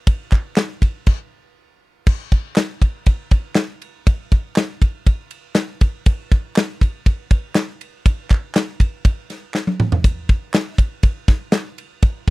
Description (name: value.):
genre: indie pop.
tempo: 120 BPM.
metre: 4/4.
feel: straight.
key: none.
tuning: none.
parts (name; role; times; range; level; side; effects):
modern studio drum kit; drums; 0.1-12.3 s; crash cymbal, hi-hat, kick drum, ride cymbal, snare drum, toms; -14 LUFS; equal; none.
group handclap; percussion; 0.3-11.6 s; none; -30 LUFS; right 4 dB; none.
room: little or no reverb.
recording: dry, close 1970s-style studio recording.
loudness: -17 LUFS.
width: side -22 dB against mid.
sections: 0.0-2.1 A section; 2.1-12.3 A section.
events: stop 1.1-2.1; drum fill 9.5-10.0.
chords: none.